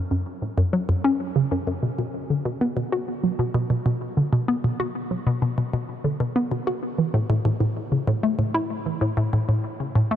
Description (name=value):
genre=ambient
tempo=96 BPM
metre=4/4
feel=straight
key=unclear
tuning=A4 = 438 Hz
part: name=hollow square pluck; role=solo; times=0.1-10.2 s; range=F#2 to F#4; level=-22 LUFS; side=equal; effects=chorus, phaser, analog delay
room=moderate huge ambient reverb, RT60 7.1 s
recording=none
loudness=-22 LUFS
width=side -10 dB against mid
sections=0.0-10.2 A section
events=none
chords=none